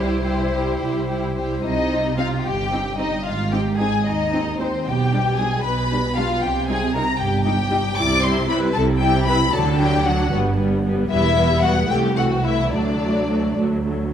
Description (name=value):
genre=quick classical-period movement for string orchestra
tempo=76 BPM (dotted quarters)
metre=6/8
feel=uneven beats, rubato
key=C minor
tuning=A4 = 440 Hz
part: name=dark studio violin section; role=melody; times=0.0-13.6 s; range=C5 to D6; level=-24 LUFS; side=left 4 dB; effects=none
part: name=rich studio violin section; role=second line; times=0.0-13.6 s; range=C4 to D5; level=-26 LUFS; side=left 2 dB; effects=none
part: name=warm studio viola section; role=accompaniment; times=0.0-14.1 s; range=E3 to E4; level=-24 LUFS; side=equal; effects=none
part: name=rich studio cello section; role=bass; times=0.0-14.1 s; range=C2 to E4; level=-25 LUFS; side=right 3 dB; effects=none
part: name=warm studio double bass section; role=bass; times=0.0-14.1 s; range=E1 to Eb2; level=-25 LUFS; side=right 3 dB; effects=none
room=moderate concert hall reverb, RT60 2.4 s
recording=none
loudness=-18 LUFS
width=side -9 dB against mid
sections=0.0-1.6 A section; 1.6-14.1 B section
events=none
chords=0.0 C; 1.6 Cm; 3.3 Ab; 4.9 G/B; 6.4 Cm; 8.0 C; 9.5 D; 10.3 G; 11.1 Em; 11.9 Am/C; 12.7 D